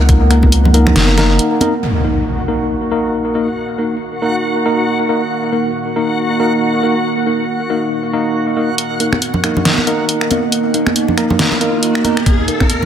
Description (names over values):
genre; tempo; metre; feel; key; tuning
deep dubstep; 138 BPM; 4/4; swing 57% on 16ths, half-time; Eb minor; A4 = 438 Hz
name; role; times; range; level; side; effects
deep dark ambient pad; sustained chords; 0.0-12.9 s; Bb3 to Gb5; -21 LUFS; right 3 dB; chorus, built-in reverb
saturated sub bass; bass; 0.0-1.4 s; Gb1 to Db2; -11 LUFS; equal; none
dubstep drum kit; drums; 0.0-1.7, 8.8-12.8 s; finger snaps, hi-hat, snare drum; -17 LUFS; equal; overdrive
electronic kick drum; drums; 0.1-0.5, 12.3-12.7 s; none; -13 LUFS; equal; none
tine electric piano; stabs; 0.3-12.7 s; Bb3 to Bb4; -17 LUFS; equal; medium stereo tremolo, low-pass filter, dub echo
congas; percussion; 0.4-1.7, 9.1-12.9 s; none; -21 LUFS; right 1 dB; dub echo
impact and riser; sound effects; 1.8-3.6, 10.5-12.9 s; none; -23 LUFS; equal; none
backwards swelling texture; texture; 2.4-8.8 s; Gb4 to Gb5; -22 LUFS; left 1 dB; built-in reverb
room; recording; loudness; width
light reverb; none; -12 LUFS; side -9 dB against mid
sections
0.0-1.8 A section; 1.8-8.8 B section; 8.8-12.9 C section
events
break 1.4-1.8; impact 1.8-3.6; filter sweep on ambient pad 1.8-8.8; build-up 8.8-12.9; riser 10.5-12.9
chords
0.0 Eb5